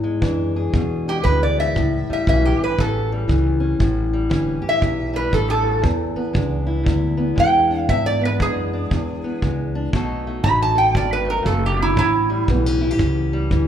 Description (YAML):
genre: acoustic country blues, solo or duo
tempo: 117 BPM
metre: 4/4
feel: swing 63% on 8ths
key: unclear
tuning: A4 = 437 Hz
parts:
  - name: fingerpicked steel-string acoustic guitar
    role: accompaniment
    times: 0.0-13.7 s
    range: E2 to A4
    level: -23 LUFS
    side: left 1 dB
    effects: none
  - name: upright bass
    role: bass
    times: 0.0-13.7 s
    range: F#1 to G#2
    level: -22 LUFS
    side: equal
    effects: none
  - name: kick drum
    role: drums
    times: 0.2-13.7 s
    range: none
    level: -23 LUFS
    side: equal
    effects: none
  - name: lap resonator guitar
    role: melody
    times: 1.1-12.5 s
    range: E4 to B5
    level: -20 LUFS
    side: right 2 dB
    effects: none
room: moderate recital hall reverb, RT60 1.5 s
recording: recorded in a church or concert hall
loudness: -17 LUFS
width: side -9 dB against mid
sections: 0.0-13.7 A section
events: none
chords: 0.0 E7; 1.7 A7; 5.8 E7; 9.9 B7; 12.0 A7